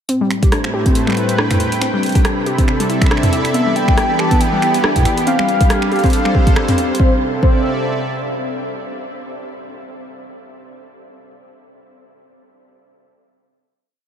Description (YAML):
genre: IDM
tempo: 139 BPM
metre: 4/4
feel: swing 56% on 16ths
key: C major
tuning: A4 = 440 Hz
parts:
  - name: warm analog pad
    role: sustained chords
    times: 0.1-8.7 s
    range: A2 to G5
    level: -21 LUFS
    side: right 1 dB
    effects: chorus, vintage 12-bit sampler grit
  - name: warbly dusty pluck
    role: arpeggios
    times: 0.1-7.6 s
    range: G3 to G4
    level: -20 LUFS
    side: left 2 dB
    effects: chorus, diffuse ambient delay
  - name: electro analog drum machine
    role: drums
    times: 0.1-7.0 s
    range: finger snaps, hi-hat, rim click, toms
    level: -22 LUFS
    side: right 1 dB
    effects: diffuse ambient delay
  - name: flickering grainy texture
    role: texture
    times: 0.7-7.0 s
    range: B5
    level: -31 LUFS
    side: right 4 dB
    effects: built-in reverb
  - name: electronic kick drum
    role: drums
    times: 0.4-7.5 s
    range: none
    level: -14 LUFS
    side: equal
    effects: none
  - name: warm velvety synth lead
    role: melody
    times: 3.5-7.6 s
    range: C5 to A5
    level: -21 LUFS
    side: equal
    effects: chorus, diffuse ambient delay
room: moderate huge ambient reverb, RT60 9.1 s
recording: dreamy mix soaked in reverb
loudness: -13 LUFS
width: side -8 dB against mid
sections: 0.1-7.0 chorus; 7.0-8.7 final chord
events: none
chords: 0.1 Am9; 1.8 C6; 3.5 Em7; 5.3 G9sus4; 7.0 C6